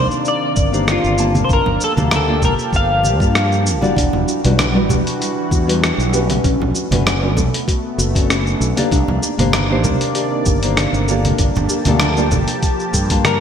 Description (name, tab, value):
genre	sunset chillout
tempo	97 BPM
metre	4/4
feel	swing 54% on 16ths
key	unclear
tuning	A4 = 440 Hz
part	clean electric guitar	melody	0.0-3.6, 13.3-13.4 s	F4 to F5	-19 LUFS	left 2 dB	analog chorus, digital delay
part	nylon-string guitar	accompaniment	0.0-13.4 s	G3 to A5	-21 LUFS	left 1 dB	auto-pan, digital delay
part	lush unison pad	sustained chords	0.0-13.4 s	C3 to A5	-24 LUFS	equal	chorus
part	fretless electric bass	bass	0.0-13.4 s	E1 to G2	-19 LUFS	equal	none
part	dusty soul sampler-style drum kit	drums	0.1-13.4 s	congas, hi-hat, rim click, shaker, toms	-20 LUFS	right 1 dB	gated reverb
part	electronic kick drum	drums	0.6-13.2 s	none	-18 LUFS	equal	none
part	congas	percussion	0.6-13.1 s	none	-27 LUFS	right 3 dB	none
part	soft round pluck	arpeggios	4.0-13.4 s	C#4 to D5	-26 LUFS	left 2 dB	analog chorus, digital delay
room	moderate lush hall reverb, RT60 1.9 s, digital ambience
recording	bright 1980s-style digital production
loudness	-14 LUFS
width	side -8 dB against mid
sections	0.0-13.4 A section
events	drum fill 13.2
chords	0.0 Cm9; 1.2 Gm9; 4.0 Em9; 6.4 Bm9; 8.9 Cm9; 11.1 Gm9